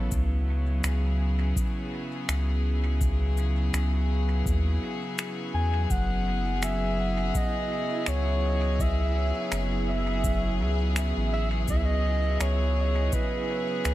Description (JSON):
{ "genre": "ambient dub", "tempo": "83 BPM", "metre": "4/4", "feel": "swing 57% on 16ths", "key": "unclear", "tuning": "A4 = 440 Hz", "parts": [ { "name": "bright chamber string section", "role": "sustained chords", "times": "0.0-13.9 s", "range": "C#3 to A4", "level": "-31 LUFS", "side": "equal", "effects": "none" }, { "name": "soft dub sub bass", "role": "bass", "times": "0.0-13.9 s", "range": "F#1 to E2", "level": "-26 LUFS", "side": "equal", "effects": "none" }, { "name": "cabasa and finger snaps", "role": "drums", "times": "0.1-13.9 s", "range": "none", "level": "-34 LUFS", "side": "equal", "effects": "dub echo" }, { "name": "electronic kick drum", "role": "drums", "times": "0.1-13.3 s", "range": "none", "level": "-29 LUFS", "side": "equal", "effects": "none" }, { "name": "mellow clarinet", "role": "melody", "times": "5.5-13.9 s", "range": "B4 to G#5", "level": "-32 LUFS", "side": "right 1 dB", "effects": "dub echo" }, { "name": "wind-like tuned noise texture", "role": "texture", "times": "7.1-13.9 s", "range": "E4", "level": "-40 LUFS", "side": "right 2 dB", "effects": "built-in reverb" } ], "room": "light reverb, small room ambience", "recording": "none", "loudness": "-24 LUFS", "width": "side -15 dB against mid", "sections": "0.0-13.9 A section", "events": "none", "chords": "0.1 C#m7; 5.9 F#7(no3); 11.7 C#m7" }